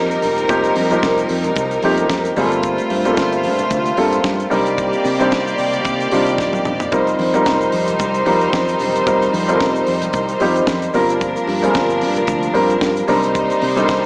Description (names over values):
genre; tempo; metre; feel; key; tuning
disco; 112 BPM; 4/4; swing 56% on 16ths; unclear; A4 = 441 Hz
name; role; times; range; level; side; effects
clear studio string section; second line; 0.0-14.1 s; F3 to D5; -23 LUFS; equal; none
warm baby grand piano; accompaniment; 0.0-14.1 s; F3 to C5; -20 LUFS; equal; none
mellow French horn section; sustained chords; 0.0-14.1 s; Bb2 to D5; -27 LUFS; equal; none
fingered electric bass; bass; 0.0-14.1 s; Eb1 to C3; -28 LUFS; equal; none
tight funk drum kit; drums; 0.1-14.0 s; hi-hat, kick drum, snare drum, toms; -28 LUFS; equal; none
egg shaker; percussion; 0.1-14.0 s; none; -45 LUFS; equal; none
congas; percussion; 0.2-14.0 s; none; -36 LUFS; equal; none
room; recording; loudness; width
light reverb, small room ambience; small speaker sound; -17 LUFS; mono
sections
0.0-14.1 A section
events
drum fill 6.4-6.9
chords
0.0 F9sus4; 2.4 Gm11; 4.5 Cm9; 6.9 F9sus4; 10.9 Gm7; 13.1 Cm9